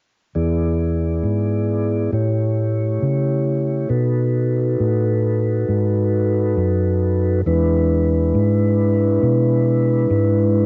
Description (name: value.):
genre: slow blues.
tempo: 68 BPM (dotted quarters).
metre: 12/8.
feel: straight.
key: E mixolydian from 7.5 s.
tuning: A4 = 440 Hz.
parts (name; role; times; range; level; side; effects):
mellow tonewheel organ; sustained chords; 0.3-10.7 s; G#3 to D5; -22 LUFS; equal; slow rotary speaker.
fingered electric bass; bass; 0.4-10.7 s; E2 to C#3; -21 LUFS; equal; none.
room: moderate studio reverb, RT60 0.7 s.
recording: home recording on cassette, nothing above 7.5 kHz.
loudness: -19 LUFS.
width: mono.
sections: 0.4-7.5 A section; 7.5-10.7 B section.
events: none.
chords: 0.4 E7; 2.1 A7; 3.9 B7; 7.5 E7.